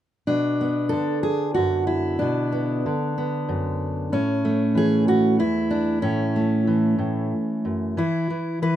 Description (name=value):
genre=folk, solo fingerstyle acoustic guitar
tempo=62 BPM (dotted quarters)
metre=6/8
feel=straight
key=B dorian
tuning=A4 = 443 Hz
part: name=fingerpicked steel-string acoustic guitar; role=solo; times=0.3-8.8 s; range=E2 to B4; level=-20 LUFS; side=equal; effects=none
room=light reverb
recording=minimal, uncompressed stereo recording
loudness=-20 LUFS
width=side -11 dB against mid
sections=0.3-8.8 A section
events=none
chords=0.3 Bm; 4.1 A; 8.0 N.C.